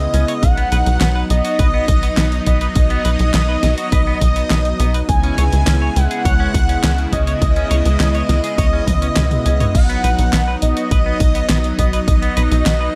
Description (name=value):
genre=synthwave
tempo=103 BPM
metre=4/4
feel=straight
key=unclear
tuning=A4 = 440 Hz
part: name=unison lead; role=melody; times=0.0-13.0 s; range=D#5 to G#5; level=-25 LUFS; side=equal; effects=subtle chorus, cassette tape, tape echo
part: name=string machine, violins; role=second line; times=0.0-13.0 s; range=D#5 to G#5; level=-32 LUFS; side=equal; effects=ensemble chorus, vintage 12-bit sampler grit, tape echo
part: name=warm analog pad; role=sustained chords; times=0.0-13.0 s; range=C#3 to E4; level=-26 LUFS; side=equal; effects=chorus, sidechain pumping
part: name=tight sequencer bass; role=bass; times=0.0-12.9 s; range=B1 to C#2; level=-19 LUFS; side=equal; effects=none
part: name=clean electric guitar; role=riff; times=0.1-12.9 s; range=B3 to C#5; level=-30 LUFS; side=equal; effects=lush chorus, tape echo
part: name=pop drum kit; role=drums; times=0.1-12.8 s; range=crash cymbal, handclaps, hi-hat, snare drum, toms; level=-24 LUFS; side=equal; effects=none
part: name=electronic kick drum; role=drums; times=0.4-12.2 s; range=none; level=-19 LUFS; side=equal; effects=none
room=little or no reverb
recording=none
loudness=-16 LUFS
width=mono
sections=0.0-13.0 A section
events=drum fill 8.9-9.7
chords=0.4 B; 5.1 C#m7; 9.7 B